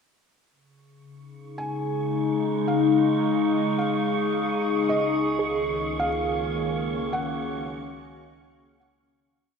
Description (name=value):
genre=ambient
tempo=54 BPM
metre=4/4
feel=straight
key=Db major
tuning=A4 = 441 Hz
part: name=warbly tape-like pad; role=sustained chords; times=1.6-9.4 s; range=Db2 to Ab4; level=-24 LUFS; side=left 2 dB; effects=chorus, built-in reverb, phaser, shimmer reverb
part: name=wind-like tuned noise texture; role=texture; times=1.9-9.4 s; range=Db6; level=-34 LUFS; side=right 5 dB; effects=built-in reverb, shimmer reverb
part: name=felt-muted upright piano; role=melody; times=1.6-8.8 s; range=Eb5 to Ab5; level=-32 LUFS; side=right 1 dB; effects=shimmer reverb, diffuse ambient delay
part: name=organ-like drone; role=drone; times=5.6-9.5 s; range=Db3 to Db4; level=-39 LUFS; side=left 1 dB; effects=ensemble chorus, built-in reverb
part: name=soft round pluck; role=arpeggios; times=5.4-9.6 s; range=none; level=barely audible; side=none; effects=none
room=wet cathedral reverb, RT60 5.2 s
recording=in a vast, echoing space, cassette tape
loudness=-22 LUFS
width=side -6 dB against mid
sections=0.5-9.4 A section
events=fade-in on synth texture 0.5-9.4; fade-in on felt piano 0.5-9.4; fade-out 5.0-9.4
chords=0.5 Db; 5.0 Ebm/Db